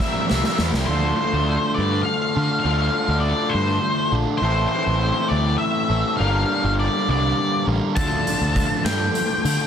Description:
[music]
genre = indie rock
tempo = 68 BPM (dotted quarters)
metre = 6/8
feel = straight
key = D minor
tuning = A4 = 440 Hz
[part]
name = octave-fuzz lead guitar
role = melody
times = 0.0-9.7 s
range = C5 to A5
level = -24 LUFS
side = left 1 dB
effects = distortion, slapback echo
[part]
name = hollow soft pad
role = sustained chords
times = 0.0-0.9 s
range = none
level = barely audible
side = none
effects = none
[part]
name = biting overdriven guitar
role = riff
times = 0.0-9.7 s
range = G2 to Bb4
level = -27 LUFS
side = right 10 dB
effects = lush chorus, slapback echo
[part]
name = crunchy overdriven guitar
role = riff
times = 0.0-9.7 s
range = G2 to Bb4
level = -26 LUFS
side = left 10 dB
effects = none
[part]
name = raw garage drum kit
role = drums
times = 0.0-0.9, 8.0-9.6 s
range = hi-hat, kick drum, snare drum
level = -24 LUFS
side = right 1 dB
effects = none
[part]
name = fuzz picked electric bass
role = bass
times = 0.3-9.6 s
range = G1 to D3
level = -23 LUFS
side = equal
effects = overdrive
[sound]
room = little or no reverb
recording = dense, heavily limited modern master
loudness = -18 LUFS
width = side -8 dB against mid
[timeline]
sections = 0.9-9.7 A section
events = drum fill 0.0-0.9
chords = 0.0 C7; 0.9 Dm7; 4.4 Am; 6.2 Gm7; 8.0 Dm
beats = | 0.88 1.76 | 2.65 3.54 | 4.42 5.31 | 6.20 7.08 | 7.97 8.86

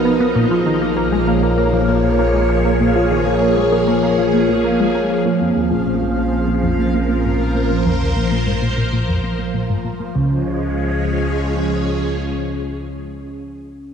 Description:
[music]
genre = ambient, sequencer-driven space music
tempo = 98 BPM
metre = 4/4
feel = straight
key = unclear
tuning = A4 = 440 Hz
[part]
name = phased string machine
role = sustained chords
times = 0.0-13.4 s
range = E#3 to Bb5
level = -20 LUFS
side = equal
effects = ensemble chorus, phaser
[part]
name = vibraphone with soft mallets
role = arpeggios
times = 0.0-13.9 s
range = Bb3 to E#5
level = -21 LUFS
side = right 1 dB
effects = auto-pan, analog delay
[part]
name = analog drone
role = bass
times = 0.0-11.9 s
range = A#1 to Db2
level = -23 LUFS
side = left 1 dB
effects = chorus
[part]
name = bubbling stepped-filter texture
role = texture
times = 0.0-10.2 s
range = E#3 to E#6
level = -30 LUFS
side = left 1 dB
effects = chorus, built-in reverb
[part]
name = tight sequenced synth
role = riff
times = 0.1-10.4 s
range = Db2 to B3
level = -20 LUFS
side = equal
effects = chorus, phaser, analog delay
[sound]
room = wet lush hall reverb, RT60 2.8 s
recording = dreamy mix soaked in reverb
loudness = -15 LUFS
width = side -7 dB against mid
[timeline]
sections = 0.0-5.3 A section; 5.3-10.2 B section; 10.2-12.6 C section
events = filter sweep on synth arpeggio sound 5.3-10.2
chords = 0.4 A#m7; 5.3 Bbmadd9; 10.2 Db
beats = | 0.35 0.97 1.58 2.19 | 2.80 3.42 4.03 4.64 | 5.25 5.87 6.48 7.09 | 7.70 8.31 8.93 9.54 | 10.15 10.76 11.38 11.99

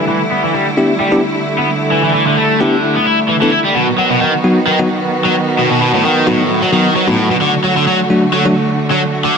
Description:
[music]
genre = breakbeat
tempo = 131 BPM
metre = 4/4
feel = swing 54% on 16ths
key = unclear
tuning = A4 = 440 Hz
[part]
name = clear symphonic string section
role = sustained chords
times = 0.0-9.4 s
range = D3 to F#4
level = -16 LUFS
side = right 2 dB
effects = vintage 12-bit sampler grit
[part]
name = cranked stack guitar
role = riff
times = 0.0-9.4 s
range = A2 to E4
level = -14 LUFS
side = equal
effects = overdrive, vintage 12-bit sampler grit, low-pass filter, digital delay
[part]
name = bell-like tine electric piano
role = stabs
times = 0.8-8.5 s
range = F#3 to A4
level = -17 LUFS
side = left 1 dB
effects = digital delay
[sound]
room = moderate lush hall reverb, RT60 2.1 s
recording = none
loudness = -11 LUFS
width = side -6 dB against mid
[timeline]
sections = 0.0-9.4 A section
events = none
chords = 0.0 Em7; 3.8 B; 7.4 D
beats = | 0.09 0.54 1.00 1.46 | 1.92 2.38 2.83 3.29 | 3.75 4.21 4.67 5.12 | 5.58 6.04 6.50 6.96 | 7.41 7.87 8.33 8.79 | 9.25

